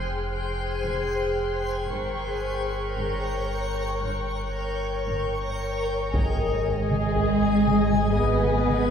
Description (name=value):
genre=cinematic, suspense film score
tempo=57 BPM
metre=4/4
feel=straight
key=unclear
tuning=A4 = 439 Hz
part: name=muted studio violin section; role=melody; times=0.0-8.9 s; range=G#5 to Db6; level=-35 LUFS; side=left 3 dB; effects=none
part: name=muted studio violin section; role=second line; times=0.0-8.9 s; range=Ab4 to G5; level=-34 LUFS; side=left 1 dB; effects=none
part: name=backwards swelling texture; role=sustained chords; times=0.0-8.9 s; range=Ab4 to G#5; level=-29 LUFS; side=left 2 dB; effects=built-in reverb
part: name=muted studio cello section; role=bass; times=0.0-8.9 s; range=F2 to B3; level=-25 LUFS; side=right 1 dB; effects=none
part: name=muted studio double bass section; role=bass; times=0.0-8.9 s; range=F1 to G#1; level=-33 LUFS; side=right 3 dB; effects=none
part: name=sub bass with octave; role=drone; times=0.0-8.9 s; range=F1 to G#1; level=-31 LUFS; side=equal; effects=none
part: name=muted studio violin section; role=texture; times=0.0-5.6 s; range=F6 to C7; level=-40 LUFS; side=left 1 dB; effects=none
part: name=muted studio viola section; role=accompaniment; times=6.1-8.9 s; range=G#4 to D#5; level=-28 LUFS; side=left 1 dB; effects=none
part: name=taiko ensemble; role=drums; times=6.1-8.9 s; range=none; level=-30 LUFS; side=equal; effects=none
part: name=impact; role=sound effects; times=6.1-8.9 s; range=none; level=-34 LUFS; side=equal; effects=none
room=wet scoring stage reverb, RT60 1.7 s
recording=heard from further back in the room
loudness=-23 LUFS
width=side -7 dB against mid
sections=0.0-6.1 A section; 6.1-8.9 B section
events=impact 6.1-8.9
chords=0.0 Fmadd9; 1.9 Gdim; 6.1 G#m